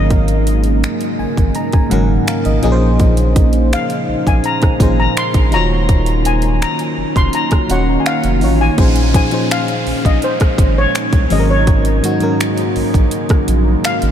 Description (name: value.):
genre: contemporary R&B.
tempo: 83 BPM.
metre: 4/4.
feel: straight.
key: Bb minor.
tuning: A4 = 439 Hz.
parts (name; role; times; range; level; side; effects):
steel pan; melody; 0.0-14.1 s; C5 to C6; -20 LUFS; left 2 dB; ping-pong delay.
FM electric piano; accompaniment; 0.0-14.1 s; Ab2 to Bb5; -19 LUFS; left 1 dB; chorus.
deep dark ambient pad; sustained chords; 0.0-14.1 s; Db3 to C5; -20 LUFS; right 2 dB; chorus, built-in reverb.
saturated sub bass; bass; 0.0-14.1 s; Eb1 to C2; -16 LUFS; equal; none.
trap drum kit; drums; 0.1-14.1 s; finger snaps, hi-hat, kick drum, rim click; -17 LUFS; equal; none.
downlifter; sound effects; 8.8-14.1 s; none; -29 LUFS; right 1 dB; none.
room: light reverb, digital ambience.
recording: none.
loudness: -12 LUFS.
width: side -9 dB against mid.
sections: 0.0-8.8 A section; 8.8-14.1 B section.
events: FM electric piano fill 0.8-3.0.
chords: 0.0 Ab9sus4; 2.6 Bbm11; 5.5 Ebm9; 8.8 Bbm11; 11.3 Ab9sus4.